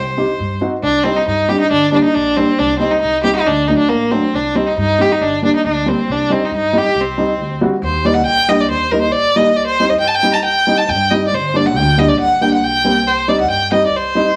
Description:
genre	klezmer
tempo	137 BPM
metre	2/4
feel	straight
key	C dorian sharp4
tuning	A4 = 440 Hz
part	clear violin	melody	0.0-14.4 s	Bb3 to Bb5	-17 LUFS	equal	none
part	upright bass	bass	0.0-14.4 s	G1 to G2	-26 LUFS	equal	none
part	dark upright piano	accompaniment	0.2-14.3 s	F#3 to G4	-19 LUFS	equal	none
room	wet studio reverb, RT60 0.8 s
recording	vinyl crackle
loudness	-15 LUFS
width	mono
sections	0.8-7.8 A section; 7.8-14.4 B section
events	none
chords	0.0 Cm; 1.7 Gm; 2.6 Cm; 3.5 D; 4.3 Cm; 5.2 Gm; 6.1 Cm; 7.8 Eb; 9.6 Cm; 11.3 Gm; 13.1 Cm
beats	0.40 | 0.84 1.27 | 1.71 2.15 | 2.59 3.02 | 3.46 3.90 | 4.34 4.77 | 5.21 5.65 | 6.09 6.52 | 6.96 7.40 | 7.83 8.27 | 8.71 9.14 | 9.58 10.01 | 10.45 10.88 | 11.32 11.75 | 12.19 12.62 | 13.06 13.50 | 13.93

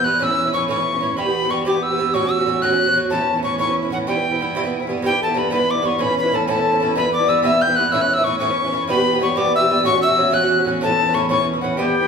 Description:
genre	celtic folk, Celtic jig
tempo	124 BPM (dotted quarters)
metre	6/8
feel	straight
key	E dorian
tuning	A4 = 440 Hz
part	tin whistle	melody	0.0-12.1 s	F#5 to G6	-19 LUFS	left 2 dB	none
part	Irish bouzouki	accompaniment	0.0-12.1 s	G2 to G4	-21 LUFS	right 3 dB	none
part	dark cello	drone	0.0-12.1 s	E2	-28 LUFS	equal	none
part	mellow baroque flute	second line	5.0-12.1 s	G4 to G5	-22 LUFS	left 3 dB	none
room	wet large studio reverb, RT60 1.3 s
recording	band playing live in one room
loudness	-16 LUFS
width	side -6 dB against mid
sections	0.0-5.0 A section; 5.0-12.1 A section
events	none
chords	0.2 A; 1.2 Em; 2.1 F#m; 3.1 A; 4.1 Em; 6.0 A; 7.0 Em; 7.9 A; 8.9 Em; 9.9 F#m; 10.8 A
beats	| 0.21 0.69 | 1.18 1.66 | 2.14 2.62 | 3.11 3.59 | 4.07 4.55 | 5.04 5.52 | 6.00 6.48 | 6.97 7.45 | 7.93 8.41 | 8.89 9.37 | 9.86 10.34 | 10.82 11.30 | 11.78

